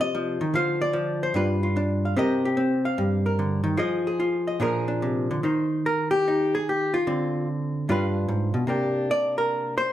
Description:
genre	solo jazz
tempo	148 BPM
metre	4/4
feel	swing 67% on 8ths, rubato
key	Eb major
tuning	A4 = 440 Hz
part	hollow-body jazz guitar	solo	0.0-9.9 s	G2 to F5	-22 LUFS	equal	none
room	moderate large studio reverb, RT60 1.1 s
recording	band playing live in one room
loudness	-22 LUFS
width	side -12 dB against mid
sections	0.0-5.4 A section; 5.4-9.9 B section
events	hollow-body jazz guitar solo 5.4-9.9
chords	0.0 Fm7; 0.5 Dm7; 1.3 G7; 2.2 Cm7; 3.8 Fm7; 4.6 Bb7; 5.4 Eb6; 7.1 Dm7; 7.9 G7; 8.7 Csus2

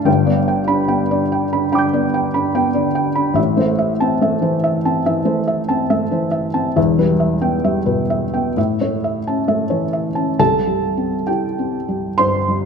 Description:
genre	neoclassical minimalist piano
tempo	64-73 BPM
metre	4/4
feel	rubato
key	unclear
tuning	A4 = 436 Hz
part	felt-muted upright piano	solo	0.0-12.7 s	E1 to G6	-15 LUFS	equal	none
room	moderate scoring stage reverb, RT60 1.7 s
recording	minimal, uncompressed stereo recording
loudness	-15 LUFS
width	side -6 dB against mid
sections	0.0-10.4 A section; 10.4-12.7 B section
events	none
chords	0.1 G; 3.4 Am; 6.8 Em; 8.6 A; 10.4 C

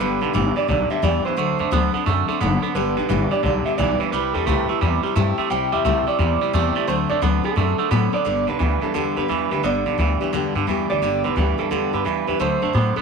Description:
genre	rockabilly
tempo	174 BPM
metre	4/4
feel	swing 65% on 8ths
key	G major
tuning	A4 = 440 Hz
part	electric guitar through a small old amp	melody	0.0-12.9 s	A4 to G5	-24 LUFS	right 4 dB	tape echo
part	picked steel-string acoustic guitar	accompaniment	0.0-13.0 s	G2 to A4	-25 LUFS	left 14 dB	none
part	twangy electric guitar	riff	0.0-13.0 s	G2 to B3	-24 LUFS	right 12 dB	none
part	upright bass	bass	0.0-13.0 s	F#1 to A2	-23 LUFS	left 1 dB	none
room	studio ambience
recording	1960s-style stereo with parts hard left and right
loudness	-18 LUFS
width	side -5 dB against mid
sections	0.0-8.3 A section; 8.3-13.0 B section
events	none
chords	0.0 G; 1.4 D7; 2.8 G; 4.1 C; 6.9 D7; 8.3 G; 12.4 D7

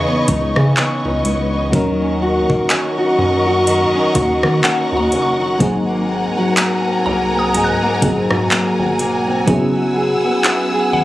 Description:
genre	contemporary R&B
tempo	62 BPM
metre	4/4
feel	swing 58% on 16ths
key	unclear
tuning	A4 = 440 Hz
part	FM electric piano with auto-pan	accompaniment	0.0-11.0 s	E3 to A#4	-22 LUFS	equal	none
part	warm studio string section	sustained chords	0.0-11.0 s	B3 to E6	-20 LUFS	left 1 dB	sidechain pumping
part	nylon-string guitar	arpeggios	0.0-11.0 s	G#2 to G#4	-18 LUFS	equal	digital delay
part	mallet-like synth pluck	texture	0.0-11.0 s	F#5 to F#6	-23 LUFS	left 1 dB	chorus, digital delay
part	rubbery square bass	bass	0.3-11.0 s	E1 to D#3	-22 LUFS	equal	none
part	smooth R&B drum kit	drums	0.3-10.7 s	handclaps, hi-hat, kick drum, rim click	-18 LUFS	equal	none
room	light reverb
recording	recorded on a phone in the room, studio reverb, compression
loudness	-14 LUFS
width	side -15 dB against mid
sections	0.0-11.0 A section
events	none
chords	0.0 C#m9; 1.7 D#m7; 5.6 G#9; 9.5 F#9sus4

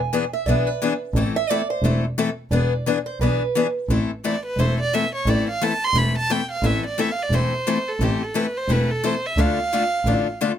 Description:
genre	acoustic string swing (jazz manouche)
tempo	175 BPM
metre	4/4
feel	swing 59% on 8ths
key	A minor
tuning	A4 = 438 Hz
part	picked old ladder-braced acoustic guitar	second line	0.0-3.7 s	B4 to G#5	-26 LUFS	right 6 dB	none
part	picked steel-string acoustic guitar	accompaniment	0.1-10.5 s	D3 to A4	-23 LUFS	left 5 dB	none
part	dark double bass	bass	0.5-10.1 s	E1 to D2	-22 LUFS	right 1 dB	none
part	warm violin	melody	4.2-10.4 s	G4 to C6	-24 LUFS	right 2 dB	none
room	light reverb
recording	close, detailed microphones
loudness	-19 LUFS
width	side -10 dB against mid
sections	0.0-3.9 A section; 3.9-10.6 A section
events	steel-string acoustic guitar solo 0.0-3.9; violin solo 3.9-10.6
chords	0.0 E7; 1.2 Am; 2.5 E7; 3.9 Am; 9.4 Dm

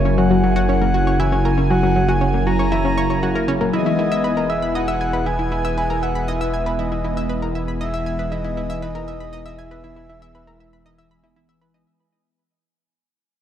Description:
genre	ambient, sequencer-driven space music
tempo	118 BPM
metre	4/4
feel	straight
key	unclear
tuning	A4 = 440 Hz
part	breathy flute-like synth lead	melody	0.0-11.4 s	C#5 to A#5	-25 LUFS	left 1 dB	chorus, analog delay
part	phased analog pad	sustained chords	0.0-11.8 s	C#3 to E4	-22 LUFS	equal	phaser, chorus
part	round analog bass	bass	0.0-11.8 s	E1 to F#1	-24 LUFS	equal	none
part	bubbling stepped-filter texture	texture	0.0-11.9 s	G#5	-33 LUFS	right 4 dB	chorus, built-in reverb
part	analog pluck	riff	0.1-11.8 s	F#3 to B5	-24 LUFS	equal	chorus, analog delay
room	wet scoring stage reverb, RT60 2.2 s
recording	dark, warm production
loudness	-17 LUFS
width	side -10 dB against mid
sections	0.0-11.9 A section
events	fade-out 3.7-11.9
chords	0.0 F#7; 3.7 Emaj7

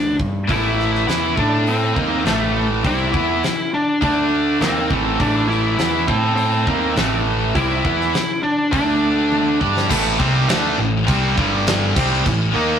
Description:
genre	hard rock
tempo	102 BPM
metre	4/4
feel	straight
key	unclear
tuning	A4 = 440 Hz
part	biting lead guitar	melody	0.0-9.6 s	A3 to E4	-20 LUFS	left 1 dB	overdrive
part	overdriven picked electric bass	bass	0.0-12.8 s	G1 to A2	-23 LUFS	equal	none
part	big rock drum kit	drums	0.2-12.4 s	crash cymbal, hi-hat, kick drum, snare drum, toms	-24 LUFS	equal	none
part	heavy high-gain guitar	riff	0.5-12.8 s	G2 to A4	-23 LUFS	left 6 dB	distortion
part	overdriven semi-hollow guitar	riff	0.5-12.8 s	G2 to A4	-22 LUFS	right 7 dB	spring reverb
part	scooped high-gain guitar	riff	9.9-12.8 s	G2 to D#4	-23 LUFS	equal	distortion
room	moderate studio reverb, RT60 0.5 s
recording	rough rehearsal-room recording, tube saturation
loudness	-16 LUFS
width	side -8 dB against mid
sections	0.0-9.9 A section; 9.9-12.8 B section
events	drum fill 9.3-9.9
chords	0.2 Am; 4.0 D5; 4.6 Am; 8.7 D5; 9.6 G5; 9.9 Am; 11.4 G5; 12.0 Am

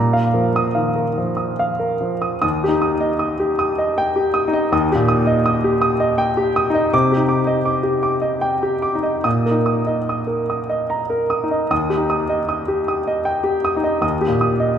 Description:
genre	neoclassical minimalist piano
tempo	70-83 BPM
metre	3/4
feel	rubato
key	Eb major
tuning	A4 = 440 Hz
part	clear grand piano	solo	0.0-14.8 s	Eb2 to Eb6	-16 LUFS	equal	none
room	wet church reverb, RT60 3.3 s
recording	recorded in a church or concert hall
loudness	-16 LUFS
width	side -8 dB against mid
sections	0.0-2.4 A section; 2.4-14.8 B section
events	none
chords	0.0 Bbsus4; 2.4 Eb; 6.9 Cmadd9; 9.2 Bbsus4; 11.7 Eb

